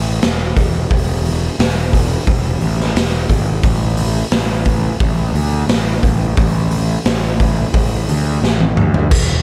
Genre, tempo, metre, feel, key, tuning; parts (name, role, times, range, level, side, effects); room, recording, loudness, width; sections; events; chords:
classic rock; 88 BPM; 4/4; straight; A4 = 442 Hz
fuzz picked electric bass; bass; 0.0-9.4 s; E1 to D2; -19 LUFS; equal; overdrive
raw garage drum kit; drums; 0.2-9.3 s; crash cymbal, hi-hat, kick drum, snare drum, toms; -18 LUFS; equal
little or no reverb; -16 LUFS; mono
0.0-9.1 A section
drum fill 8.4-9.1